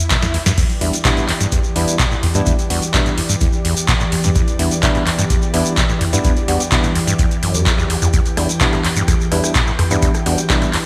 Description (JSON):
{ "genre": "acid house", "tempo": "127 BPM", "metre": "4/4", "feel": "straight", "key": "E minor", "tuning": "A4 = 440 Hz", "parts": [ { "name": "swell", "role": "sound effects", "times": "0.0-0.6 s", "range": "none", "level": "-33 LUFS", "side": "equal", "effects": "none" }, { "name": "acid bass, saw", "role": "riff", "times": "0.1-10.8 s", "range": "E2 to B2", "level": "-24 LUFS", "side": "equal", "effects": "overdrive, subtle chorus, delay" }, { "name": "booming analog drum machine", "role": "drums", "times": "0.1-10.8 s", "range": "crash cymbal, handclaps, hi-hat, rim click, snare drum, toms", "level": "-22 LUFS", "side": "equal", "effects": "small room reverb, gated reverb" }, { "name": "electronic kick drum", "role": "drums", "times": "0.1-10.6 s", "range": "none", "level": "-21 LUFS", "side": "equal", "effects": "small room reverb" }, { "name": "shekere", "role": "percussion", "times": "0.1-10.7 s", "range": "none", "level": "-28 LUFS", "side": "equal", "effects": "none" }, { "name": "lush unison pad", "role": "sustained chords", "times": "0.6-10.9 s", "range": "E2 to G5", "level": "-26 LUFS", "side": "equal", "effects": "chorus, vintage 12-bit sampler grit, sidechain pumping" }, { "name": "barky tine electric piano", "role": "stabs", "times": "0.8-10.7 s", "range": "G3 to F#4", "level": "-24 LUFS", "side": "equal", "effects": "lush chorus, delay" } ], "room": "moderate lush hall reverb, RT60 1.9 s", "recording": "bright 1980s-style digital production", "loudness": "-16 LUFS", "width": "mono", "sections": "0.0-10.9 A section", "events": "swell 0.0-0.6; drum fill 0.1-0.6", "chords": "0.0 Em7", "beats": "0.10 | 0.58 1.05 1.52 1.99 | 2.47 2.94 3.41 3.88 | 4.36 4.83 5.30 5.77 | 6.25 6.72 7.19 7.66 | 8.13 8.61 9.08 9.55 | 10.03 10.50" }